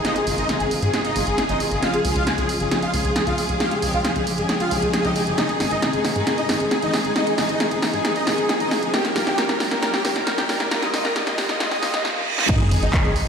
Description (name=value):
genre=uplifting trance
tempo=135 BPM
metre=4/4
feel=straight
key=Ab major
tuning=A4 = 440 Hz
part: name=supersaw chords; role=melody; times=0.0-13.1 s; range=Eb4 to Eb6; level=-23 LUFS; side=equal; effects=ensemble chorus, sidechain pumping, tape echo
part: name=clear studio string section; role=sustained chords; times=0.0-13.2 s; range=C3 to G4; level=-26 LUFS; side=left 2 dB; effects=sidechain pumping
part: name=punchy analog drum machine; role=drums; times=0.0-13.2 s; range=crash cymbal, handclaps, hi-hat, snare drum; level=-24 LUFS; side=equal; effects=none
part: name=riser, reverse cymbal and sub drop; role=sound effects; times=2.8-13.3 s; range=none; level=-29 LUFS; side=right 1 dB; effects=none
part: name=tight sequencer bass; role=bass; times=0.3-13.1 s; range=Eb1 to Ab2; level=-27 LUFS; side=equal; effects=sidechain pumping
part: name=electronic kick drum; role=drums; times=12.5-13.0 s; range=none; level=-21 LUFS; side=equal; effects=overdrive
room=moderate lush hall reverb, RT60 2.1 s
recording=played on a big sound system in a bare room, large studio reverb, high-pass filter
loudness=-19 LUFS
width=side -6 dB against mid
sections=0.0-12.5 A section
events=build-up 0.0-12.5; drum fill 0.0-12.0, 12.0-12.5; filter sweep 0.0-12.5; reverse cymbal 11.6-12.5; impact 12.5-13.3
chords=0.0 Ab; 1.8 Db; 5.4 Ab; 8.9 Eb; 12.5 Ab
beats=| 0.05 0.49 0.94 1.38 | 1.82 2.27 2.71 3.16 | 3.60 4.05 4.49 4.94 | 5.38 5.83 6.27 6.71 | 7.16 7.60 8.05 8.49 | 8.94 9.38 9.82 10.27 | 10.71 11.16 11.60 12.05 | 12.49 12.94